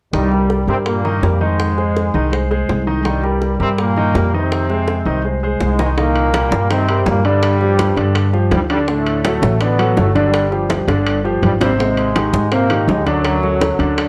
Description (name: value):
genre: latin, salsa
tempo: 165 BPM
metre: 4/4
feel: straight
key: C minor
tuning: A4 = 440 Hz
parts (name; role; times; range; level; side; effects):
- brilliant trombone section; melody; 0.1-14.1 s; F#2 to C4; -22 LUFS; equal; none
- warm concert grand piano; accompaniment; 0.1-14.1 s; C3 to Eb5; -21 LUFS; equal; none
- upright bass; bass; 0.1-14.1 s; G1 to Ab2; -21 LUFS; equal; none
- bongos; percussion; 0.1-14.1 s; none; -27 LUFS; equal; none
- congas; percussion; 6.0-14.1 s; none; -26 LUFS; equal; none
- timbales; percussion; 6.2-14.1 s; none; -28 LUFS; equal; none
room: moderate studio reverb, RT60 0.7 s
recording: worn, warbling old tape, cassette tape, warbly pitch drift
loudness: -16 LUFS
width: mono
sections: 0.1-6.0 A section; 6.0-14.1 B section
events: drum fill 4.9-6.0, 10.9-11.8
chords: 0.1 Cm7; 1.6 Fm7; 3.1 Cm7; 4.5 Fm7; 6.0 Cm7; 7.4 G5; 8.9 D; 10.3 G5; 11.8 Abmaj7; 13.2 D